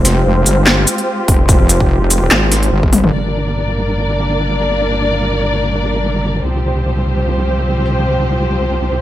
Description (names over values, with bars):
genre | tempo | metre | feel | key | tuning
heavy wobble dubstep | 146 BPM | 4/4 | swing 54% on 16ths, half-time | G phrygian | A4 = 440 Hz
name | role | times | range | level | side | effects
dark studio string section | sustained chords | 0.0-9.0 s | F3 to D5 | -18 LUFS | equal | sidechain pumping, low-pass filter
wobble bass | bass | 0.0-9.0 s | Eb1 to C2 | -15 LUFS | equal | chorus, overdrive
big-room dance drum kit | drums | 0.0-7.9 s | crash cymbal, handclaps, hi-hat, shaker, snare drum, toms | -14 LUFS | left 1 dB | low-pass filter on perc, low-pass filter on snare, low-pass filter on hats, low-pass filter on toms, low-pass filter on cymbals, low-pass filter on room
electronic kick drum | drums | 1.3-2.9 s | none | -13 LUFS | equal | none
room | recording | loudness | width
light reverb | none | -12 LUFS | side -13 dB against mid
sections
0.0-3.1 A section; 3.1-9.0 B section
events
drop 0.0-3.1; drum fill 2.9; filter sweep on drum 3.1-9.0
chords
0.0 Fmadd9; 3.1 Gm; 6.4 Csus4